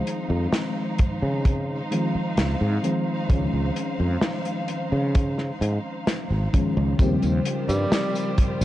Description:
vaporwave; 65 BPM; 4/4; straight; Db lydian; A4 = 441 Hz
mellow FM electric piano; accompaniment; 0.0-8.6 s; Db3 to Db4; -27 LUFS; left 1 dB; lush chorus, tape echo
rich studio string section; sustained chords; 0.0-8.6 s; Eb3 to F5; -33 LUFS; right 1 dB; vintage 12-bit sampler grit
natural country drum kit; drums; 0.1-8.6 s; hi-hat, snare drum, tambourine; -28 LUFS; equal; vintage 12-bit sampler grit
sustaining fretless electric bass; bass; 0.3-8.6 s; Ab1 to Db3; -24 LUFS; equal
kick drum; drums; 1.0-8.6 s; -21 LUFS; equal; vintage 12-bit sampler grit
bright tenor saxophone; melody; 7.7-8.4 s; G3; -30 LUFS; right 2 dB; vintage 12-bit sampler grit, tape echo
light reverb, studio reverb; cassette tape; -21 LUFS; side -14 dB against mid
0.0-7.0 A section; 7.0-8.6 B section
0.0 Dbmaj9; 7.0 Eb13

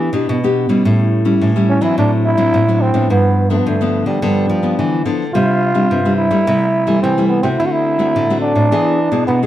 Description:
samba and choro; 107 BPM; 4/4; straight; A4 = 440 Hz
growling trombone; melody; 0.0-9.4 s; G3 to F#4; -16 LUFS; right 2 dB; plate reverb
nylon-string guitar; accompaniment; 0.0-9.5 s; G2 to G#4; -17 LUFS; left 2 dB
nylon-string guitar; bass; 0.0-9.5 s; G2 to G3; -17 LUFS; right 1 dB
light reverb; dark, warm production; -12 LUFS; side -12 dB against mid
0.0-9.5 A section
0.0 Em7; 0.9 A7; 2.0 D7/A; 3.1 G7; 5.3 Csus2; 6.5 Am7/C; 7.6 D7; 8.7 E7

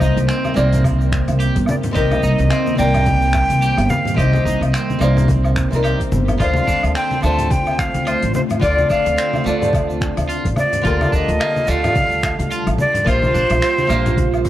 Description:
sunset chillout; 108 BPM; 4/4; swing 57% on 16ths; C dorian; A4 = 440 Hz
breathy bright jazz flute; melody; 0.0-14.5 s; C5 to A5; -20 LUFS; equal; tape echo
nylon-string guitar; accompaniment; 0.0-14.5 s; C3 to F5; -22 LUFS; moving between left 4 dB and right 4 dB; auto-pan, tape echo
ethereal airy pad; sustained chords; 0.0-14.5 s; Eb3 to A5; -26 LUFS; left 1 dB; ensemble chorus, built-in reverb
electric guitar at the edge of break-up; arpeggios; 0.0-14.2 s; A3 to G4; -27 LUFS; right 2 dB; tape echo
upright bass; bass; 0.0-14.5 s; G1 to D2; -19 LUFS; equal
electronic kick drum; drums; 0.0-14.5 s; -22 LUFS; equal
jazz brush drum kit; drums; 0.0-14.5 s; finger snaps, hi-hat, rim click, shaker, woodblock; -28 LUFS; equal
congas; percussion; 0.4-14.3 s; -25 LUFS; left 1 dB
small room reverb; dry, gritty hardware recording, cassette tape; -14 LUFS; side -13 dB against mid
0.0-14.5 A section
0.0 Cm7; 6.4 Dm7; 10.6 Gm9/D; 13.1 Bbsus2

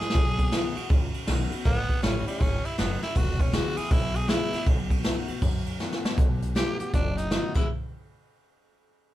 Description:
rockabilly; 159 BPM; 4/4; swing 63% on 8ths; A4 = 440 Hz
breathy tenor saxophone; melody; 0.0-7.7 s; G3 to G#4; -31 LUFS; right 1 dB
picked steel-string acoustic guitar; accompaniment; 0.0-7.7 s; E2 to F#4; -35 LUFS; left 5 dB
upright bass; bass; 0.0-7.7 s; E1 to F#2; -29 LUFS; equal
jazz brush drum kit; drums; 0.0-7.6 s; crash cymbal, hi-hat, kick drum, ride cymbal, snare drum; -25 LUFS; equal
light reverb; band playing live in one room; -23 LUFS; side -14 dB against mid
0.0-6.2 A section; 6.2-7.7 B section; 7.7-9.1 C section
drum fill 5.8-6.2, 7.5
0.1 B7; 1.6 A7; 3.2 E7; 4.7 B7; 7.5 E7; 7.7 N.C.

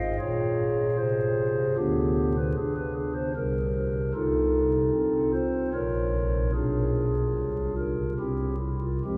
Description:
classical, chorale-style piece for pipe organ; 75 BPM; 3/4; rubato; F minor; A4 = 442 Hz
pipe organ, stopped flute; solo; 0.0-9.2 s; Ab1 to Eb5; -27 LUFS; equal
wet cathedral reverb, RT60 7.0 s; recorded in a church or concert hall, vinyl crackle; -27 LUFS; mono
0.0-9.2 A section
0.0 Fm/Ab; 1.8 G/D; 3.3 N.C.; 4.1 F7/C; 5.7 Bbm; 6.5 Bdim7; 7.3 Fm/C; 8.2 C

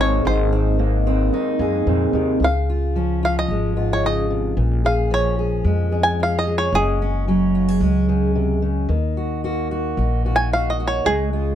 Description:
acoustic folk duo or small band; 111 BPM; 4/4; straight; Db major; A4 = 440 Hz
bluegrass banjo; melody; 0.0-11.6 s; Ab4 to Ab5; -21 LUFS; right 1 dB
fingerpicked steel-string acoustic guitar; accompaniment; 0.0-11.6 s; F2 to Ab4; -22 LUFS; left 1 dB
electric guitar through a small old amp; arpeggios; 0.0-2.5, 11.1-11.6 s; Eb3 to C4; -23 LUFS; right 6 dB; harmonic tremolo
upright bass; bass; 0.0-11.6 s; Gb1 to Gb2; -21 LUFS; equal
light reverb; dark, warm production; -17 LUFS; side -10 dB against mid
0.0-2.4 A section; 2.4-11.6 B section
five-string banjo solo 2.4-11.6
0.0 Abadd9; 2.4 Db; 4.6 Bbm7; 6.7 Gbsus2; 8.9 Ebm

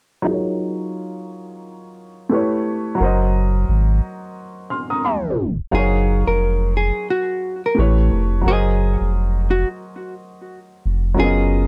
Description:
lo-fi hip hop; 88 BPM; 4/4; swing 58% on 16ths; A4 = 442 Hz
warm upright piano; accompaniment; 0.2-11.7 s; F#3 to E#6; -24 LUFS; equal; cassette tape, low-pass filter
warm sub bass; bass; 3.0-11.7 s; E#1 to A1; -20 LUFS; equal
hollow-body jazz guitar; melody; 5.7-11.7 s; F#4 to A#4; -24 LUFS; equal; analog delay
light reverb; dark, warm production, tape stop; -19 LUFS; mono
0.3-5.7 A section; 5.7-11.7 B section
filter sweep on upright piano 0.3-5.7; tape stop 5.0-5.7
0.3 D#m11/F#; 2.3 A9; 3.0 G#7/F#; 5.7 D#m11; 7.8 A9; 8.5 G#7

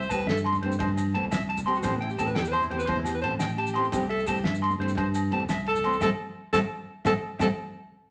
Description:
highlife guitar band; 115 BPM (dotted quarters); 12/8; straight; A4 = 439 Hz
breathy alto saxophone; melody; 0.0-7.5 s; B3 to C5; -31 LUFS; equal
electric guitar at the edge of break-up; arpeggios; 0.0-7.5 s; C5 to C6; -32 LUFS; equal
fingered electric bass; bass; 0.0-7.5 s; A1 to G2; -33 LUFS; equal
maracas; percussion; 0.0-7.5 s; -50 LUFS; equal
nylon-string guitar; accompaniment; 0.1-7.5 s; E3 to G4; -35 LUFS; equal
damped 70s drum kit; drums; 0.1-7.5 s; kick drum, ride cymbal, snare drum; -38 LUFS; equal
agogo bells; percussion; 0.1-7.5 s; -38 LUFS; equal
congas; percussion; 0.2-7.5 s; -40 LUFS; equal
moderate studio reverb, RT60 0.9 s; -27 LUFS; mono
0.0-8.1 A section
alto saxophone solo 0.0-8.1; band accent 6.0-8.1
0.0 C6; 1.8 Am7; 3.9 C6; 6.0 Am7

